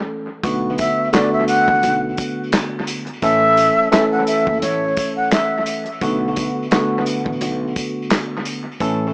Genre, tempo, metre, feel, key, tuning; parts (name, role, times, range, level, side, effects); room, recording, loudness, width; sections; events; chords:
hip hop, boom-bap hip-hop; 86 BPM; 4/4; swing 55% on 16ths; B minor; A4 = 439 Hz
tine electric piano; accompaniment; 0.0-9.1 s; D3 to A4; -20 LUFS; equal; medium stereo tremolo, cassette tape, analog delay
upright bass; bass; 0.4-9.1 s; F#1 to B1; -27 LUFS; equal
warm soul drum kit; drums; 0.4-9.0 s; handclaps, hi-hat, kick drum, snare drum; -21 LUFS; equal; analog delay
sleigh bells; percussion; 0.4-9.0 s; -32 LUFS; equal; analog delay
jazz flute; melody; 0.8-5.6 s; C#5 to F#5; -16 LUFS; equal; analog delay
light reverb, small room ambience; echo-heavy mix, small speaker sound; -15 LUFS; side -38 dB against mid
0.0-9.1 A section
break 0.0-0.4
0.4 Bm7; 3.2 A; 6.0 Bm7